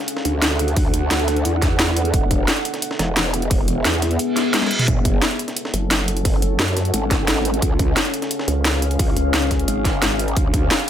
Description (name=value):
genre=dark technical drum and bass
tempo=175 BPM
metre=4/4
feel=straight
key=F# minor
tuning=A4 = 440 Hz
part: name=deep dark ambient pad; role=sustained chords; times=0.0-10.9 s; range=B3 to F#5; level=-24 LUFS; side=left 1 dB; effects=chorus, built-in reverb, sidechain pumping
part: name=breakbeat sampler-style drum kit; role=drums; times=0.1-10.9 s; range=hi-hat, snare drum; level=-29 LUFS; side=equal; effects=none
part: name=drum and bass drum kit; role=drums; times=0.1-10.9 s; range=hi-hat, snare drum, toms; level=-21 LUFS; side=equal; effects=overdrive
part: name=growl bass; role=bass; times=0.3-10.7 s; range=E1 to E2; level=-21 LUFS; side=equal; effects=chorus, overdrive, sidechain pumping
part: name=electronic kick drum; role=drums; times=0.8-10.6 s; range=none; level=-20 LUFS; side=equal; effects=none
part: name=reverse cymbal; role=sound effects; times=4.3-4.9 s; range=none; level=-24 LUFS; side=right 2 dB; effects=none
part: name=vowel-sweep wobble bass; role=bass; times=5.7-9.7 s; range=F#1 to F#2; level=-20 LUFS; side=equal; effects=chorus
room=little or no reverb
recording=none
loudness=-17 LUFS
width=side -10 dB against mid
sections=0.0-10.9 A section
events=reverse cymbal 4.3-4.9; drum fill 4.5-4.9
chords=0.0 D; 2.1 E; 4.9 F#m; 7.6 C#; 10.4 D